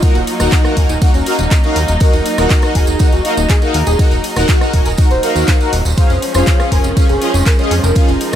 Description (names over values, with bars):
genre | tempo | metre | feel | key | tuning
progressive house | 121 BPM | 4/4 | straight | Eb dorian | A4 = 438 Hz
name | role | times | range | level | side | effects
muted studio string section | sustained chords | 0.0-8.4 s | F3 to Eb4 | -22 LUFS | right 1 dB | sidechain pumping
soft round pluck | arpeggios | 0.0-8.4 s | Bb3 to C5 | -20 LUFS | equal | ensemble chorus, sidechain pumping, dub echo
soft supersaw | stabs | 0.0-8.4 s | Db4 to Ab5 | -19 LUFS | left 1 dB | analog chorus, sidechain pumping, dub echo
deep house drum kit | drums | 0.0-8.4 s | handclaps, hi-hat, ride cymbal, rim click | -23 LUFS | equal | none
electronic kick drum | drums | 0.0-8.1 s | none | -12 LUFS | equal | none
tambourine | percussion | 0.0-8.4 s | none | -28 LUFS | right 3 dB | none
fat analog bass | bass | 0.2-8.4 s | Eb1 to F2 | -16 LUFS | equal | sidechain pumping
room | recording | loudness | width
little or no reverb | none | -10 LUFS | side -10 dB against mid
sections
0.0-8.4 A section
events
none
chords
0.0 Ebm; 6.0 Db/F